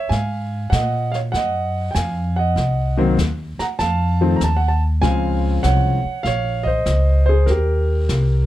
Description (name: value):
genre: jazz piano trio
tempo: 98 BPM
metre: 4/4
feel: swing 67% on 8ths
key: Ab mixolydian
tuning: A4 = 441 Hz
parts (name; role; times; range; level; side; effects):
- clear grand piano; melody; 0.0-8.5 s; Db3 to Bb5; -21 LUFS; equal; none
- upright bass; bass; 0.1-8.5 s; Bb1 to Bb2; -18 LUFS; equal; none
- jazz brush drum kit; drums; 0.1-8.5 s; brushed snare drum, hi-hat, kick drum, snare drum; -30 LUFS; left 2 dB; none
room: light reverb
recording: dark, warm production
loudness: -16 LUFS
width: side -14 dB against mid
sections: 0.0-8.5 A section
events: none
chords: 0.1 Absus2; 2.6 Cdim; 3.8 F7; 5.0 Bbm7; 7.5 Eb6